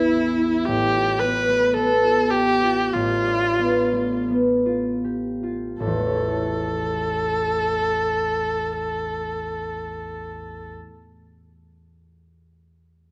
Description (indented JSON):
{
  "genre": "classical, impressionist duo for viola and harp",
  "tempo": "39-58 BPM",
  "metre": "4/4",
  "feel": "rubato",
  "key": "A mixolydian",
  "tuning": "A4 = 438 Hz",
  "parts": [
    { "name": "warm viola", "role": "melody", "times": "0.0-10.7 s", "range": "E4 to B4", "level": "-24 LUFS", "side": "equal", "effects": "none" },
    { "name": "concert harp", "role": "accompaniment", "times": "0.0-11.0 s", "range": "A1 to G#4", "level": "-26 LUFS", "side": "equal", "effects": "none" }
  ],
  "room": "moderate recital hall reverb, RT60 1.9 s",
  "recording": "close, detailed microphones",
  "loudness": "-22 LUFS",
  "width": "mono",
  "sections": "0.0-5.8 A section; 5.8-11.6 B section",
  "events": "slowing down 0.0-5.8",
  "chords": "0.0 Asus2; 0.7 G9/A; 5.8 A"
}